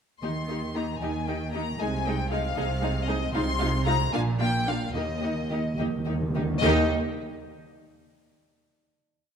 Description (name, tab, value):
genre	quick classical-period movement for symphony orchestra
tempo	71-79 BPM (dotted quarters)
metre	6/8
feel	rubato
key	Eb major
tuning	A4 = 444 Hz
part	rich chamber violin section	melody	0.2-6.9 s	Eb5 to C6	-32 LUFS	left 5 dB	none
part	dark chamber violin section	second line	0.2-6.9 s	F4 to F5	-34 LUFS	left 5 dB	none
part	rich chamber viola section	accompaniment	0.2-6.9 s	Ab3 to Eb4	-31 LUFS	right 2 dB	none
part	rich chamber cello section	bass	0.2-6.9 s	D2 to Eb3	-32 LUFS	right 2 dB	none
part	warm chamber double bass section	bass	0.2-6.9 s	Bb1 to Eb2	-31 LUFS	right 2 dB	none
part	timpani	percussion	0.2-1.0, 4.9-6.9 s	Eb3	-31 LUFS	equal	none
room	moderate scoring stage reverb, RT60 2.0 s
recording	none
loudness	-24 LUFS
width	side -7 dB against mid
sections	0.2-6.6 A section; 6.6-8.2 final chord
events	timpani fill 4.9-6.6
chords	0.2 Eb; 1.8 Ab/C; 4.1 Bb; 4.9 Eb; 6.6 Eb5